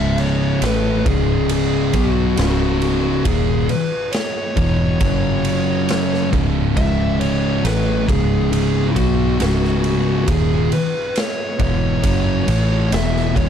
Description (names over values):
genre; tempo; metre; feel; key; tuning
stoner and doom metal; 68 BPM; 4/4; straight; C# minor; A4 = 440 Hz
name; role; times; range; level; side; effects
fuzz lead guitar; melody; 0.0-13.5 s; E4 to E5; -24 LUFS; equal; distortion, ping-pong delay
thick fuzz guitar; riff; 0.0-13.5 s; C#2 to B3; -20 LUFS; left 7 dB; distortion
thick fuzz guitar; riff; 0.0-13.5 s; C#2 to B3; -22 LUFS; right 12 dB; distortion
overdriven picked electric bass; bass; 0.0-13.5 s; C#1 to B1; -22 LUFS; right 1 dB; none
raw garage drum kit; drums; 0.2-13.5 s; kick drum, ride cymbal, snare drum; -23 LUFS; right 1 dB; none
room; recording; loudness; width
small room ambience; dark, warm production; -15 LUFS; side -8 dB against mid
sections
0.0-13.5 A section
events
none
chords
0.0 C#m; 5.0 F#5; 6.3 C#m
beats
0.63 1.51 2.38 | 3.26 4.14 5.01 5.89 | 6.77 7.64 8.52 9.40 | 10.28 11.16 12.04 12.92